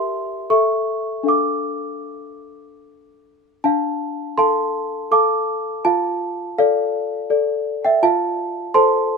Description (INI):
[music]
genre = classical, lullaby for celesta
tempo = 75-84 BPM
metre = 3/4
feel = rubato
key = D minor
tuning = A4 = 440 Hz
[part]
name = small celesta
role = solo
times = 0.0-9.2 s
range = D4 to D6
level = -17 LUFS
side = equal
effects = none
[sound]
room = light reverb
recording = minimal, uncompressed stereo recording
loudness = -17 LUFS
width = side -4 dB against mid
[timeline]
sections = 0.0-3.6 A section; 3.6-9.2 A section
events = none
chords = 0.0 Edim/G; 0.5 A; 1.3 Dm; 5.8 Dm/F; 8.0 F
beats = 0.51 | 1.29 2.09 2.87 | 3.64 4.38 5.12 | 5.85 6.57 7.30 | 8.02 8.74